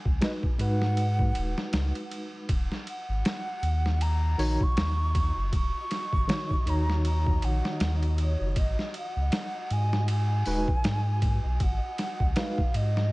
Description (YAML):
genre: trip hop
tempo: 79 BPM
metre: 4/4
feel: swing 58% on 16ths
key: Eb minor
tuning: A4 = 440 Hz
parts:
  - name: warm sub bass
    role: bass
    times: 0.1-13.1 s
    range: Eb1 to Ab2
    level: -26 LUFS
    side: equal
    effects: tube saturation
  - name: boom bap sampler-style drum kit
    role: drums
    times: 0.1-13.1 s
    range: hi-hat, kick drum, ride cymbal, snare drum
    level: -30 LUFS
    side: equal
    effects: vintage 12-bit sampler grit
  - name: mellow hollow concert flute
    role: melody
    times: 0.2-13.1 s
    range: Db5 to Db6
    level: -34 LUFS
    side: right 1 dB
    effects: vintage 12-bit sampler grit, tape echo
  - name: tine electric piano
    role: accompaniment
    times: 0.2-12.6 s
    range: Eb3 to Db5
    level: -33 LUFS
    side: equal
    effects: medium tremolo, harmonic tremolo
  - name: flickering grainy texture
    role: texture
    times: 2.9-13.1 s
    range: Gb4 to Eb5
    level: -45 LUFS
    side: left 1 dB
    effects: built-in reverb
room: little or no reverb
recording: vinyl crackle, nothing above 10.9 kHz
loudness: -25 LUFS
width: side -22 dB against mid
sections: 0.0-13.1 A section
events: none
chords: 0.0 Abm7; 2.5 Ebm7; 8.6 Abm7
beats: 0.21 0.97 1.73 | 2.49 3.25 4.01 4.77 | 5.53 6.29 7.04 7.80 | 8.56 9.32 10.08 10.84 | 11.60 12.36 13.12